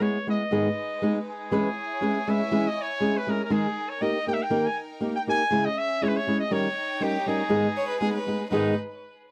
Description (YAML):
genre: mexican folk, mariachi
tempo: 120 BPM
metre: 2/4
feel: straight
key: G# harmonic minor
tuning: A4 = 440 Hz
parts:
  - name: bright trumpet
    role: melody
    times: 0.0-8.8 s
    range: D#4 to G#5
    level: -31 LUFS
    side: equal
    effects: none
  - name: flamenco guitar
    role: accompaniment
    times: 0.0-8.7 s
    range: G#2 to B4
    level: -27 LUFS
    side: equal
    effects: none
  - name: clear chamber violin section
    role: sustained chords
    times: 0.5-8.8 s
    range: G#3 to G#5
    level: -39 LUFS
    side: equal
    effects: none
  - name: rich violin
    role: second line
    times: 7.8-8.8 s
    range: G#4 to C#5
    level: -34 LUFS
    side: equal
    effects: tape echo
room: light reverb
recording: dry, close 1970s-style studio recording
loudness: -26 LUFS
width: mono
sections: 0.0-8.5 A section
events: none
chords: 0.0 E; 0.5 G#m; 1.5 E6; 2.5 C#m/E; 3.5 D#sus4; 4.0 D#; 5.5 C#m; 6.5 D#7; 7.5 G#m